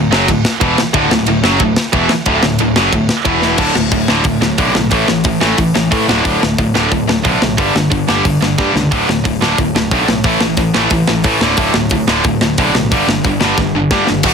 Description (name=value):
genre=punk rock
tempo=180 BPM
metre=4/4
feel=straight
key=D major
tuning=A4 = 440 Hz
part: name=tight distorted guitar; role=riff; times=0.0-14.3 s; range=D2 to F#4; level=-16 LUFS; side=left 12 dB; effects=distortion
part: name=tight distorted guitar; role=riff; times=0.0-14.3 s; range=D2 to F#4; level=-16 LUFS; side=right 13 dB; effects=distortion
part: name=picked electric bass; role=bass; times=0.0-14.3 s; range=D1 to A2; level=-20 LUFS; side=equal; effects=none
part: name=tight metal drum kit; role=drums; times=0.1-14.3 s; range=crash cymbal, hi-hat, kick drum, ride cymbal, snare drum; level=-16 LUFS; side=left 1 dB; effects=none
room=little or no reverb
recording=heavily compressed radio sound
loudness=-11 LUFS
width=side -6 dB against mid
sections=0.0-3.6 A section; 3.6-14.2 B section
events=drum fill 3.4, 8.6-8.9, 13.6-14.2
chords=0.0 D; 3.3 E5; 3.6 D5; 4.9 A5; 6.1 D5; 7.6 G5; 8.9 D5; 10.3 A5; 11.4 D5; 12.9 G5